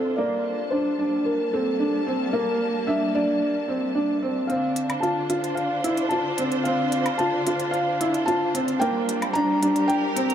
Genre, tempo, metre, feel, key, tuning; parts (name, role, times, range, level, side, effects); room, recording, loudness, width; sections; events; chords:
piano and strings electronica; 111 BPM; 4/4; straight; D minor; A4 = 439 Hz
felt-muted upright piano; melody; 0.0-10.3 s; A4 to Bb5; -26 LUFS; left 1 dB; low-pass filter, tape echo
clear symphonic string section; sustained chords; 0.0-10.3 s; D3 to A5; -29 LUFS; equal
warm upright piano; riff; 0.0-10.3 s; Bb3 to F4; -24 LUFS; right 1 dB; tape echo
electronic hi-hat and woodblock; drums; 4.5-10.3 s; -33 LUFS; equal; low-pass filter on hats, low-pass filter on perc, low-pass filter on room
moderate huge ambient reverb, RT60 7.3 s; -21 LUFS; side -9 dB against mid
0.0-4.5 A section; 4.5-10.3 B section
build-up 4.5-10.3; filter sweep on felt piano 4.5-10.3
0.2 Gmadd9; 4.5 Dm7; 8.8 Gm